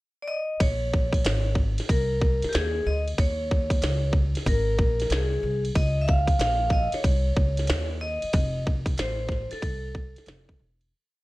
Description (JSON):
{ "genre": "hip hop, jazz-hop", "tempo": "93 BPM", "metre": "4/4", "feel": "swing 65% on 16ths", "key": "Bb minor", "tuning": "A4 = 440 Hz", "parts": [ { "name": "vibraphone with medium hard mallets", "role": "accompaniment", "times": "0.2-10.6 s", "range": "G4 to F5", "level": "-28 LUFS", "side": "equal", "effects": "none" }, { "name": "upright bass", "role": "bass", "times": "0.6-10.9 s", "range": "E1 to Eb2", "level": "-27 LUFS", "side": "equal", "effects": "none" }, { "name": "minimal click drum kit", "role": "drums", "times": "0.6-10.9 s", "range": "hi-hat, kick drum, ride cymbal, snare drum", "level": "-26 LUFS", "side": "equal", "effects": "none" } ], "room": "light reverb", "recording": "none", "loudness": "-22 LUFS", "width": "side -19 dB against mid", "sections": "0.0-0.6 pickup bar; 0.6-10.9 head", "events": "vibraphone solo 0.6-10.9; fade-out 8.3-10.9", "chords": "0.0 N.C.; 0.6 Bbm11; 3.2 Absus4 (rootless); 4.5 Abadd9; 5.8 Dbsus2; 8.3 F", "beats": "| 0.60 1.25 1.89 2.54 | 3.18 3.83 4.47 5.12 | 5.76 6.41 7.05 7.70 | 8.34 8.99 9.63 10.28" }